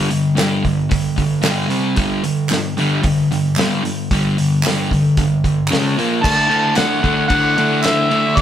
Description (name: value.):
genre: garage rock duo or trio.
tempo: 113 BPM.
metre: 4/4.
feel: straight.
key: unclear.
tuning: A4 = 440 Hz.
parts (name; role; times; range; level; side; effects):
fuzz guitar; riff; 0.0-8.4 s; G2 to D4; -16 LUFS; equal; distortion.
cloth-damped thuddy drum kit; drums; 0.1-8.4 s; crash cymbal, hi-hat, kick drum, ride cymbal, snare drum; -21 LUFS; equal; none.
group handclap; percussion; 0.4-8.0 s; none; -25 LUFS; right 3 dB; none.
warm harmonica; melody; 6.2-8.4 s; D5 to A5; -16 LUFS; equal; overdrive.
room: moderate studio reverb, RT60 0.9 s.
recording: band playing live in one room.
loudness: -14 LUFS.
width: side -10 dB against mid.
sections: 0.0-6.2 A section; 6.2-8.4 B section.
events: none.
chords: 0.0 G5; 1.7 C5; 2.0 G5; 5.7 C#5; 6.0 Bb5; 6.2 D.